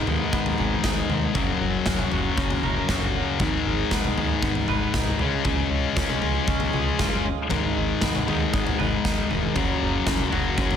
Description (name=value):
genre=quiet-loud alternative rock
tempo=117 BPM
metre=4/4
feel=straight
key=G# minor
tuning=A4 = 440 Hz
part: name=twangy electric guitar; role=arpeggios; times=0.0-10.8 s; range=G#2 to B4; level=-31 LUFS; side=right 9 dB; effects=lush chorus, digital delay
part: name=thick fuzz guitar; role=riff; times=0.0-10.8 s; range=F#2 to C#4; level=-24 LUFS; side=left 8 dB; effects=distortion
part: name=growling fingered electric bass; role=bass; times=0.1-10.7 s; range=E1 to D#2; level=-30 LUFS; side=right 1 dB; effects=overdrive
part: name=big rock drum kit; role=drums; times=0.1-10.8 s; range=kick drum, snare drum, toms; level=-26 LUFS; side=right 1 dB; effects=none
room=light reverb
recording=none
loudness=-21 LUFS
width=side -8 dB against mid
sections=0.0-10.8 A section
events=none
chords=0.0 G#m; 1.4 F#; 3.4 G#m; 5.2 C#; 7.5 G#m; 9.6 F#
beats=0.33 0.85 | 1.36 1.87 2.38 2.90 | 3.41 3.92 4.43 4.95 | 5.46 5.97 6.48 7.00 | 7.51 8.02 8.53 9.05 | 9.56 10.07 10.58